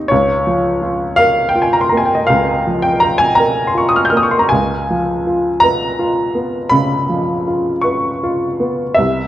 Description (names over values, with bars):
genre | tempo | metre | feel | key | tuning
classical, romantic nocturne for solo piano | 54 BPM (dotted quarters) | 12/8 | rubato | unclear | A4 = 440 Hz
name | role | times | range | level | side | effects
warm upright piano | solo | 0.0-9.3 s | C2 to G6 | -13 LUFS | equal | none
room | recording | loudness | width
wet recital hall reverb, RT60 1.6 s | dark, warm production | -13 LUFS | side -13 dB against mid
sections
0.0-9.3 A section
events
none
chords
0.1 Bbm/Db; 4.5 Db7